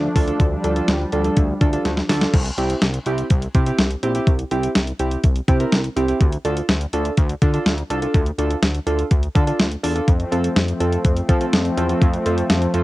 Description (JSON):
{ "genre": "synth-pop", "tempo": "124 BPM", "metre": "4/4", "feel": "straight", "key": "unclear", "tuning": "A4 = 440 Hz", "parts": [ { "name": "brassy analog pad", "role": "sustained chords", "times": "0.0-2.3, 10.1-12.8 s", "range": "F3 to D4", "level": "-24 LUFS", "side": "left 1 dB", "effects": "chorus, tremolo, cassette tape" }, { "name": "chorused synth bass", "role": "bass", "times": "0.0-12.8 s", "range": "Bb1 to F3", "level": "-23 LUFS", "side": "equal", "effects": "none" }, { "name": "warm analog keys", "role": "accompaniment", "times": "0.2-12.8 s", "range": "C4 to Bb4", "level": "-23 LUFS", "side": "right 1 dB", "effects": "chorus, cassette tape" }, { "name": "clean 12-bit digital drum machine", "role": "drums", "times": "0.2-12.8 s", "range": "crash cymbal, hi-hat, kick drum, snare drum", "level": "-18 LUFS", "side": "equal", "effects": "overdrive, cassette tape" } ], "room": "light reverb", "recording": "home recording on cassette", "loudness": "-17 LUFS", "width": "side -18 dB against mid", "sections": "0.0-2.3 A section; 2.3-12.8 B section", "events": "drum fill 1.9-2.3", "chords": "0.0 Dm; 2.3 C; 6.2 Dm; 10.1 F" }